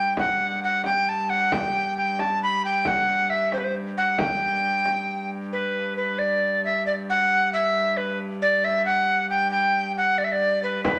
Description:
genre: medieval dance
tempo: 90 BPM (dotted quarters)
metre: 6/8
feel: straight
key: G major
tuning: A4 = 442 Hz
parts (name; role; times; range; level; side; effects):
- bright reedy tenor recorder; melody; 0.0-11.0 s; B4 to B5; -24 LUFS; equal; none
- warm hurdy-gurdy; drone; 0.0-11.0 s; G2; -35 LUFS; equal; none
- frame drum; percussion; 0.2-5.1, 10.8-11.0 s; none; -32 LUFS; equal; none
room: moderate large studio reverb, RT60 1.1 s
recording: none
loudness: -23 LUFS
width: mono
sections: 0.0-5.5 A section; 5.5-11.0 B section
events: none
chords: none

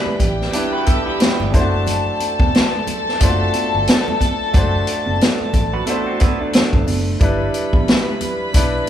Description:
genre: lush 1970s-style soul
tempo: 90 BPM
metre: 4/4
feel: swing 58% on 16ths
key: unclear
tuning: A4 = 441 Hz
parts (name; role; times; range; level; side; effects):
- warm studio string section; second line; 0.0-8.9 s; G4 to B5; -24 LUFS; left 3 dB; none
- clear baby grand piano; accompaniment; 0.0-8.9 s; G3 to C5; -22 LUFS; equal; none
- vintage muted fingered electric bass; bass; 0.1-8.8 s; E1 to B1; -23 LUFS; equal; none
- vintage drum kit; drums; 0.2-8.9 s; hi-hat, kick drum, snare drum; -17 LUFS; equal; none
- congas; percussion; 0.2-8.7 s; none; -29 LUFS; right 6 dB; none
- electric guitar through a small old amp; riff; 0.5-1.5, 5.7-7.2 s; A3 to B4; -26 LUFS; right 4 dB; spring reverb
room: moderate large studio reverb, RT60 1.2 s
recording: band playing live in one room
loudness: -15 LUFS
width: side -10 dB against mid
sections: 0.0-8.9 A section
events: none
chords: 0.0 G6; 1.5 D7; 7.2 G6

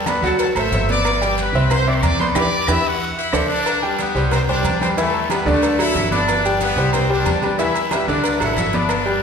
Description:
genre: latin, salsa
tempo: 184 BPM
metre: 4/4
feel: straight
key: G major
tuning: A4 = 440 Hz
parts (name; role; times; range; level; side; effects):
- bright trumpet section; melody; 0.0-9.2 s; A3 to E6; -21 LUFS; left 1 dB; none
- upright bass; bass; 0.0-9.2 s; G1 to E2; -23 LUFS; equal; none
- bright grand piano; accompaniment; 0.1-9.2 s; D3 to G5; -20 LUFS; equal; none
- agogo bells and timbales; percussion; 0.1-9.1 s; none; -28 LUFS; right 5 dB; none
- claves; percussion; 0.1-3.4, 8.9-9.1 s; none; -34 LUFS; left 4 dB; none
- congas; percussion; 0.1-9.2 s; none; -29 LUFS; left 2 dB; none
- cowbell; percussion; 0.1-9.1 s; none; -28 LUFS; left 5 dB; none
- guiro; percussion; 0.1-9.2 s; none; -34 LUFS; left 3 dB; none
- maracas; percussion; 0.1-9.1 s; none; -35 LUFS; right 6 dB; none
room: wet scoring stage reverb, RT60 1.6 s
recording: recorded in a church or concert hall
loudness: -16 LUFS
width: side -6 dB against mid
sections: 0.0-3.7 A section; 3.7-9.2 A section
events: band accent 2.4-3.7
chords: 0.4 D7; 1.0 G; 1.7 C; 2.4 Em7; 3.0 D7; 3.7 G; 4.3 C; 5.0 Em7; 5.6 D; 6.3 G; 6.9 C; 7.6 Em7; 8.2 D

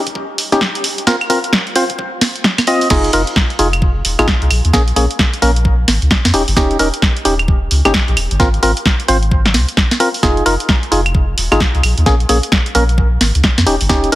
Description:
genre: UK garage, two-step garage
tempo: 131 BPM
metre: 4/4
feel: swing 62% on 16ths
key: F minor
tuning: A4 = 444 Hz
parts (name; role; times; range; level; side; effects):
- electronic kick drum; drums; 0.1-14.0 s; none; -16 LUFS; equal; high-pass filter on kick
- punchy analog drum machine; drums; 0.1-14.2 s; claves, crash cymbal, hi-hat, snare drum; -16 LUFS; equal; none
- percussive organ stab; stabs; 0.5-14.2 s; Bb3 to Eb5; -16 LUFS; equal; chorus, dub echo
- saturated sub bass; bass; 2.9-14.2 s; Eb1 to F2; -15 LUFS; equal; none
room: light reverb, digital ambience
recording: heavily compressed radio sound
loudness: -11 LUFS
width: side -16 dB against mid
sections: 0.0-2.9 A section; 2.9-14.2 B section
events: build-up 0.0-2.9; filter sweep on synth stab 0.0-2.9; drop 2.9-14.2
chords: 0.0 Eb7; 1.1 Cmadd11; 2.9 Fm7; 4.5 Bbm7; 6.3 Eb7; 8.4 Ab69; 10.2 Fm7; 11.8 Bbm7

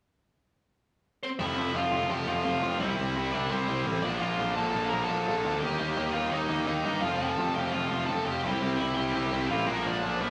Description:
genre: punk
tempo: 170 BPM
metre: 4/4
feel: straight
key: unclear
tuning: A4 = 441 Hz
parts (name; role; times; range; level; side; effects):
- overdriven electric guitar; melody; 1.2-10.3 s; Bb3 to Bb5; -34 LUFS; equal; none
- distorted electric guitar; riff; 1.4-10.3 s; Bb2 to F4; -38 LUFS; equal; none
- tight distorted guitar; riff; 1.4-10.3 s; F2 to Eb4; -34 LUFS; equal; distortion
- fuzz picked electric bass; bass; 1.4-10.3 s; F1 to G2; -35 LUFS; equal; overdrive
room: light reverb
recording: rough rehearsal-room recording, tube saturation, studio reverb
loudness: -29 LUFS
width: mono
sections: 0.0-1.4 A section; 1.4-10.3 B section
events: none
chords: 0.0 N.C.; 1.4 F; 2.8 C; 4.0 Bb; 5.6 Eb; 7.0 F; 8.4 C; 9.7 Bb

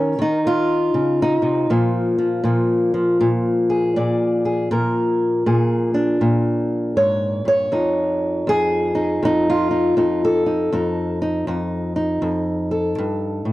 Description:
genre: acoustic country blues, solo or duo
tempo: 80 BPM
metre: 4/4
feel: swing 64% on 8ths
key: Bb mixolydian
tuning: A4 = 440 Hz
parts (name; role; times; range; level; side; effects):
- fingerpicked old ladder-braced acoustic guitar; solo; 0.0-13.5 s; F2 to D5; -17 LUFS; equal; none
room: studio ambience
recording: dry, close 1970s-style studio recording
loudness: -17 LUFS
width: side -16 dB against mid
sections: 0.0-13.5 A section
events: none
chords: 0.0 Eb7(no3); 1.7 Bb7; 7.7 F7

